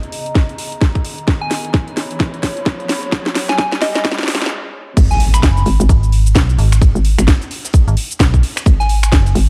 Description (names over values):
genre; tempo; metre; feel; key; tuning
bass house; 130 BPM; 4/4; swing 60% on 16ths; G# minor; A4 = 441 Hz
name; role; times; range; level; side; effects
house drum kit; drums; 0.0-9.5 s; cabasa, crash cymbal, finger snaps, hi-hat, snare drum; -22 LUFS; equal; overdrive
riser and impact; sound effects; 0.2-6.8 s; none; -29 LUFS; equal; none
warbly tape-like pad; texture; 0.0-4.5 s; B3 to B5; -31 LUFS; equal; chorus, built-in reverb, sidechain pumping
electronic kick drum; drums; 0.4-9.2 s; none; -15 LUFS; equal; none
soft synth bell; melody; 1.4-5.7, 8.8-9.0 s; D#5 to B5; -24 LUFS; equal; chorus, phaser, digital delay
hollow knocking FM bass; bass; 5.0-9.5 s; G#1; -16 LUFS; equal; sidechain pumping
huge arena drum kit; drums; 5.0-9.5 s; hi-hat, snare drum; -36 LUFS; equal; none
metallic FM bass; bass; 5.4-9.3 s; F#1 to B1; -15 LUFS; equal; sidechain pumping
room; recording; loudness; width
little or no reverb; dark, warm production, high-pass filter; -15 LUFS; mono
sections
0.0-5.0 A section; 5.0-9.5 B section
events
build-up 0.0-5.0; drum fill 0.0-4.5; filter sweep 0.0-5.0; riser 0.2-4.5; break 4.5-5.0; drop 5.0-9.5; impact 5.0-6.8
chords
0.0 G#madd9; 5.0 N.C.